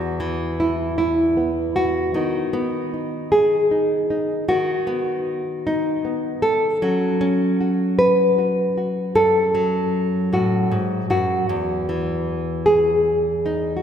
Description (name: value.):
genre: folk, solo fingerstyle acoustic guitar.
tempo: 51 BPM (dotted quarters).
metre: 6/8.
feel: straight.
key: unclear.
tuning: A4 = 440 Hz.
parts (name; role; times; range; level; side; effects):
nylon-string guitar; solo; 0.0-13.8 s; E2 to B4; -18 LUFS; equal; none.
room: wet church reverb, RT60 2.8 s.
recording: recorded in a church or concert hall.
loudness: -18 LUFS.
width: side -8 dB against mid.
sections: 0.0-13.8 A section.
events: none.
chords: 0.0 E5; 2.1 B/D#; 6.8 F#m; 11.5 N.C..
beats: 0.98 | 2.14 3.31 | 4.48 5.65 | 6.81 7.98 | 9.15 10.32 | 11.49 12.66.